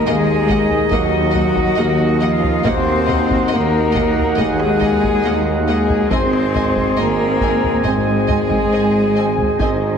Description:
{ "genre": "cinematic, epic orchestral film score", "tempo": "69 BPM", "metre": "4/4", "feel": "straight", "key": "unclear", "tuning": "A4 = 440 Hz", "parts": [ { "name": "small flute group", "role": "second line", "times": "0.0-10.0 s", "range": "Eb5 to C6", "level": "-26 LUFS", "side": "left 2 dB", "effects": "none" }, { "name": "chamber organ, flutes", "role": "sustained chords", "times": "0.0-10.0 s", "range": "Eb4 to Eb5", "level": "-25 LUFS", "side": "right 2 dB", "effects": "none" }, { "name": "clear trombone section", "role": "sustained chords", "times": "0.0-10.0 s", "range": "Eb3 to Eb4", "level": "-28 LUFS", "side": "right 3 dB", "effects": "none" }, { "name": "warm French horn section", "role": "sustained chords", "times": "0.0-10.0 s", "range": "Eb4 to C5", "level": "-21 LUFS", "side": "left 6 dB", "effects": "none" }, { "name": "mellow trumpet section", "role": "stabs", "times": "0.0-10.0 s", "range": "Eb5 to Ab5", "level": "-26 LUFS", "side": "right 2 dB", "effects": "none" }, { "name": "warm chamber cello section", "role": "bass", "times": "0.0-10.0 s", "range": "Eb3 to C4", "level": "-21 LUFS", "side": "right 1 dB", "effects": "none" }, { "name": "warm symphonic violin section", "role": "melody", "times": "0.1-9.7 s", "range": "Gb5 to Ab5", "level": "-33 LUFS", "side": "left 1 dB", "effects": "none" }, { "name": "rich symphonic violin section", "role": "second line", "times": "0.1-9.7 s", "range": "Eb5", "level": "-30 LUFS", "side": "left 1 dB", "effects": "none" }, { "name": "warm symphonic viola section", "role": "accompaniment", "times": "0.1-9.7 s", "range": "Bb3 to C4", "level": "-28 LUFS", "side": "right 1 dB", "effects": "none" }, { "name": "clear tuba", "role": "bass", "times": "0.1-10.0 s", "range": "Ab1 to Eb2", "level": "-23 LUFS", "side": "right 3 dB", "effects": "none" }, { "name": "warm symphonic double bass section", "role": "bass", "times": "0.1-10.0 s", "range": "Ab1 to Eb2", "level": "-23 LUFS", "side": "right 1 dB", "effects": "none" }, { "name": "taiko ensemble", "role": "drums", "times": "0.5-10.0 s", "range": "none", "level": "-24 LUFS", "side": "equal", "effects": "none" } ], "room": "wet scoring stage reverb, RT60 1.5 s", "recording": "heavily compressed radio sound", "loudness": "-14 LUFS", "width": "side -7 dB against mid", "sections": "0.0-10.0 A section", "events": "none", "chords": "0.0 Ebm; 6.1 Ab" }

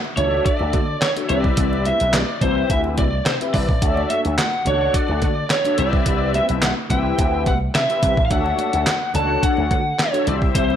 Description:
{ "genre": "early-eighties boogie funk", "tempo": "107 BPM", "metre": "4/4", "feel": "straight", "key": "D major", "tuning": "A4 = 442 Hz", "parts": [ { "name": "congas", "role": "percussion", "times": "0.0-10.8 s", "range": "none", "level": "-32 LUFS", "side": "right 6 dB", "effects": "none" }, { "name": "lead guitar through a small cranked amp", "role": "melody", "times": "0.2-10.8 s", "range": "C5 to A5", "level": "-22 LUFS", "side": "equal", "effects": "overdrive" }, { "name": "mellow synth brass", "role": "accompaniment", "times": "0.2-10.8 s", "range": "C4 to F#5", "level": "-24 LUFS", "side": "left 4 dB", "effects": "chorus, phaser" }, { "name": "slap bass with an envelope filter", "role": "bass", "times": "0.2-10.8 s", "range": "A1 to D3", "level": "-23 LUFS", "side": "equal", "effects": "none" }, { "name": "detuned 8-bit digital drum machine", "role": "drums", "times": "0.2-10.7 s", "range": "handclaps, hi-hat, kick drum, snare drum", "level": "-21 LUFS", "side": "equal", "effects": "gated reverb" } ], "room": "light reverb", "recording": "none", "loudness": "-17 LUFS", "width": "side -9 dB against mid", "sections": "0.0-10.8 A section", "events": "none", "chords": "0.0 Dmaj9; 1.3 Cmaj7; 3.8 Dmaj9; 5.8 Cmaj7; 8.3 Dmaj9" }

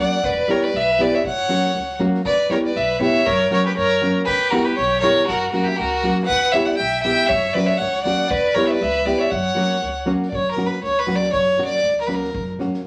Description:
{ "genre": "balkan folk, Balkan wedding band", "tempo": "119 BPM", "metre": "2/4", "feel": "swing 56% on 16ths", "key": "F# phrygian dominant", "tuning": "A4 = 441 Hz", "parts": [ { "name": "rich fiddle", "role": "melody", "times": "0.0-12.5 s", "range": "G4 to G5", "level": "-22 LUFS", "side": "equal", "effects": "none" }, { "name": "rich violin", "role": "second line", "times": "0.0-10.1 s", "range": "E4 to E5", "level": "-26 LUFS", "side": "equal", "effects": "none" }, { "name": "nylon-string guitar", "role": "accompaniment", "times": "0.0-12.8 s", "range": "F#3 to G4", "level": "-24 LUFS", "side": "equal", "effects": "none" }, { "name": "upright bass", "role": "bass", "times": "0.0-12.9 s", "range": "E1 to F#2", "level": "-34 LUFS", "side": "equal", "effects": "none" }, { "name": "soft-mallet drum kit", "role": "percussion", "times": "0.2-12.9 s", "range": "kick drum, snare drum", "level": "-41 LUFS", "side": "equal", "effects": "none" } ], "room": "wet small room reverb, RT60 0.5 s", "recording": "none", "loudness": "-19 LUFS", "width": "mono", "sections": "0.0-2.3 A section; 2.3-10.3 A section; 10.3-12.9 B section", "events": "fiddle solo 10.3-12.9", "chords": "0.2 Em; 1.2 F#; 2.3 Em; 3.3 F#; 4.3 Em; 5.3 F#; 6.3 Em; 7.3 F#; 8.3 Em; 9.3 F#" }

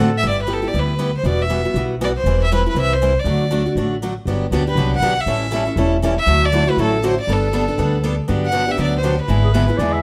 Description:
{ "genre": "acoustic string swing (jazz manouche)", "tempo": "239 BPM", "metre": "4/4", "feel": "swing 57% on 8ths", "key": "G major", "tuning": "A4 = 440 Hz", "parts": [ { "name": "growling clarinet", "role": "second line", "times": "0.0-0.2, 9.4-10.0 s", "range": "G#4 to E5", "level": "-26 LUFS", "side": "equal", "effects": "none" }, { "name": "picked steel-string acoustic guitar", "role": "accompaniment", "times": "0.0-10.0 s", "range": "D3 to B4", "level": "-24 LUFS", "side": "equal", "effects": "none" }, { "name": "picked steel-string acoustic guitar", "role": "accompaniment", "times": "0.0-0.1, 4.3-10.0 s", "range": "D3 to A4", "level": "-27 LUFS", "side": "equal", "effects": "none" }, { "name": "upright bass", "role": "bass", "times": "0.0-10.0 s", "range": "E1 to A2", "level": "-22 LUFS", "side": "equal", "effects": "none" }, { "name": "bright violin", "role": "melody", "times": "0.2-9.9 s", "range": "A4 to F#5", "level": "-24 LUFS", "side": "equal", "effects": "none" } ], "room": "moderate studio reverb, RT60 0.7 s", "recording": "none", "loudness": "-18 LUFS", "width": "mono", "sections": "0.2-8.3 A section; 8.3-10.0 B section", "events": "none", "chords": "0.2 G6; 1.2 Emadd9; 2.3 Cmaj7/E; 3.3 D; 4.3 Gmaj7; 5.3 A7; 6.3 Dadd9; 7.3 Gadd9; 8.3 Gmaj7; 9.3 E7/G#" }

